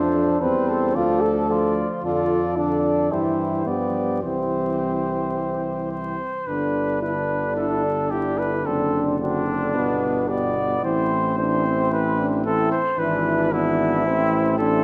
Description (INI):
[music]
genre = classical, brass quintet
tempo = 110 BPM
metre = 4/4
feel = straight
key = C major, G major from 6.5 s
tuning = A4 = 438 Hz
[part]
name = warm trumpet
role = melody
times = 0.0-14.8 s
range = D4 to D5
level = -28 LUFS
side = equal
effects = none
[part]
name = warm flugelhorn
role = second line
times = 0.0-14.8 s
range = B3 to B4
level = -32 LUFS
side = equal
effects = none
[part]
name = bright trombone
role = accompaniment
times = 0.0-14.8 s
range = B2 to G3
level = -31 LUFS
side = equal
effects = none
[part]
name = clear French horn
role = accompaniment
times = 0.0-14.8 s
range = B3 to B4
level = -28 LUFS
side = equal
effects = none
[part]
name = clear bass trombone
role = bass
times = 0.0-14.8 s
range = F#1 to G2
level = -29 LUFS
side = equal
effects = none
[sound]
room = moderate scoring stage reverb, RT60 1.6 s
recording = vinyl crackle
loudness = -22 LUFS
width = mono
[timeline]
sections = 0.0-6.5 A section; 6.5-14.8 B section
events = none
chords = 0.0 F; 1.0 Dm; 2.0 Dm/F; 3.1 C/G; 3.7 G7; 4.2 C; 6.5 G; 8.7 D7/F#; 9.7 G; 10.8 Am; 13.0 E7/G#; 14.1 Am